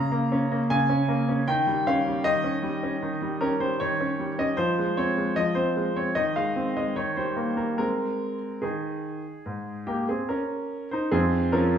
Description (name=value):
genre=classical-period piano sonatina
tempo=71-78 BPM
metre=4/4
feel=rubato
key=Ab major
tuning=A4 = 440 Hz
part: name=bright grand piano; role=solo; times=0.0-11.8 s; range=F2 to Bb5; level=-23 LUFS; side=equal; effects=none
room=wet recital hall reverb, RT60 1.4 s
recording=small room ambience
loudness=-24 LUFS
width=side -8 dB against mid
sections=0.0-11.1 A section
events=none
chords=0.0 Bbm/Db; 1.5 Eb7; 4.6 Fm; 6.2 Ab/Eb; 7.0 Eb; 7.8 Ab; 11.1 F5